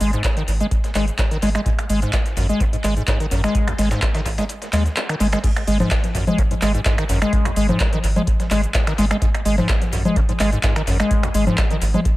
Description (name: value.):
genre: acid house.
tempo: 127 BPM.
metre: 4/4.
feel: swing 53% on 16ths.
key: unclear.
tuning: A4 = 440 Hz.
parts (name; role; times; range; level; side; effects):
acid bass, square; riff; 0.0-12.0 s; Ab1 to Ab3; -22 LUFS; equal; analog chorus, analog delay.
round analog bass; bass; 0.0-12.0 s; Ab1 to Eb2; -21 LUFS; equal; sidechain pumping.
booming analog drum machine; drums; 0.0-12.2 s; congas, crash cymbal, finger snaps, handclaps, hi-hat, shaker; -24 LUFS; left 1 dB; analog delay.
dusty soul sampler-style drum kit; drums; 0.0-12.2 s; hi-hat, snare drum; -36 LUFS; equal; none.
electronic kick drum; drums; 0.2-12.2 s; none; -20 LUFS; equal; none.
room: light reverb, digital ambience.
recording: echo-heavy mix.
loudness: -17 LUFS.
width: side -17 dB against mid.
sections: 0.0-5.4 A section; 5.4-12.2 B section.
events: kick drops out 4.5-5.4; drop 5.4-12.2.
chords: 0.0 Ab5.